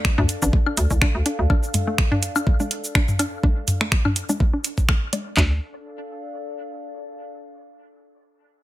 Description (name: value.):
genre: minimal techno.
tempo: 124 BPM.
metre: 4/4.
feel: swing 55% on 16ths.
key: D minor.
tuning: A4 = 440 Hz.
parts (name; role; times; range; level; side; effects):
garage drum kit; drums; 0.0-5.5 s; handclaps, kick drum; -19 LUFS; equal; overdrive.
garage drum kit; drums; 0.0-5.2 s; finger snaps, hi-hat, shaker; -24 LUFS; right 1 dB; overdrive.
electronic congas, toms and woodblock; percussion; 0.0-5.2 s; none; -26 LUFS; left 2 dB; dub echo.
warbly tape-like pad; texture; 0.0-7.3 s; D4 to F5; -34 LUFS; left 1 dB; chorus, built-in reverb, sidechain pumping.
hollow square pluck; riff; 0.2-5.6 s; A3 to D5; -28 LUFS; equal; chorus, sidechain pumping, dub echo.
hollow knocking FM bass; bass; 0.2-1.5, 5.4-5.6 s; A1 to D2; -20 LUFS; equal; sidechain pumping.
room: digital ambience.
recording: none.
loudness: -18 LUFS.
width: side -15 dB against mid.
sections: 0.0-5.4 A section; 5.4-7.3 B section.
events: fade-out on ambient pad 0.0-5.4; filter sweep on synth arpeggio sound 0.0-5.4.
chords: 0.0 Dm.